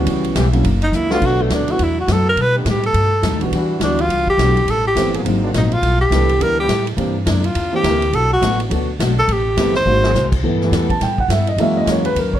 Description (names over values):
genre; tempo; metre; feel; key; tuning
jazz, big band swing; 208 BPM; 4/4; swing 61% on 8ths; unclear; A4 = 441 Hz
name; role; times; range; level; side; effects
warm concert grand piano; accompaniment; 0.0-12.4 s; D3 to A5; -20 LUFS; right 1 dB; none
clear trombone section; sustained chords; 0.0-12.4 s; D3 to Bb4; -26 LUFS; right 1 dB; none
upright bass; bass; 0.0-12.4 s; F#1 to B2; -19 LUFS; equal; none
picked steel-string acoustic guitar; accompaniment; 0.1-12.4 s; F#2 to B4; -25 LUFS; left 4 dB; none
swinging big-band drum kit; drums; 0.1-12.4 s; crash cymbal, hi-hat, kick drum, ride cymbal, snare drum; -24 LUFS; equal; none
breathy tenor saxophone; melody; 0.8-10.3 s; A3 to C5; -17 LUFS; equal; none
room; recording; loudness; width
light reverb; dark, warm production; -14 LUFS; side -11 dB against mid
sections
0.0-1.2 A section; 1.2-10.4 A section; 10.4-12.4 A section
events
tenor saxophone solo 0.0-10.4; drum fill 0.9, 9.9; grand piano solo 10.4-12.4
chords
0.1 C#m7b5; 0.6 F#7b13; 1.2 Bm7; 2.4 B7b13; 3.5 Em9; 4.7 Am7; 5.2 Ab9; 5.8 G69; 7.0 C9; 8.1 Bm7; 9.3 Am9; 9.9 Ab9; 10.4 G69; 11.6 F#7